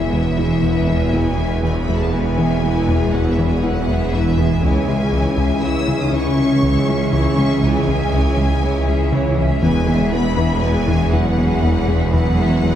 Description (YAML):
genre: cinematic, hybrid orchestral and electronic film score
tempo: 120 BPM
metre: 5/4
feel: straight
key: unclear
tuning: A4 = 437 Hz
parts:
  - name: bright studio violin section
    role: melody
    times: 0.0-12.8 s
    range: E5 to E6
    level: -28 LUFS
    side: left 3 dB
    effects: none
  - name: rich symphonic violin section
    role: second line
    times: 0.0-12.8 s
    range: E4 to E5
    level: -27 LUFS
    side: left 1 dB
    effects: none
  - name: rich symphonic viola section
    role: accompaniment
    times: 0.0-12.8 s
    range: E3 to E4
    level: -26 LUFS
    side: right 1 dB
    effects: none
  - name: mellow French horn section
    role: sustained chords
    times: 0.0-12.8 s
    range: E3 to E4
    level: -24 LUFS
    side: left 1 dB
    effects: none
  - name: metallic inharmonic drone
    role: sustained chords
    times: 0.0-12.8 s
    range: E3 to C#5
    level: -26 LUFS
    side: left 2 dB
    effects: chorus, built-in reverb
  - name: tight sequenced synth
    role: arpeggios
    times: 0.0-12.8 s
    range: C#3 to E4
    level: -26 LUFS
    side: left 1 dB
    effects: none
  - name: plucky analog bass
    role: riff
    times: 0.0-12.8 s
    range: C#2 to E3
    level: -21 LUFS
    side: left 1 dB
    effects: none
  - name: dark tuba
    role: bass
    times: 0.0-12.8 s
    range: E1 to C#2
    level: -25 LUFS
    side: right 3 dB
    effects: none
  - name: rich symphonic cello section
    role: bass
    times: 0.0-12.8 s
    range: C#2 to E2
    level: -25 LUFS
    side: right 2 dB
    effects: none
  - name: rich symphonic double bass section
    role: bass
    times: 0.0-12.8 s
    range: E1 to C#2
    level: -25 LUFS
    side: right 2 dB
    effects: none
  - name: wide detuned saw bass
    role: bass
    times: 0.0-12.8 s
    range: E1 to C#2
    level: -26 LUFS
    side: equal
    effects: chorus
room: wet scoring stage reverb, RT60 1.6 s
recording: heard from further back in the room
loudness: -15 LUFS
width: side -10 dB against mid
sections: 0.0-12.8 A section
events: none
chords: 0.0 E; 4.6 C#m; 9.6 E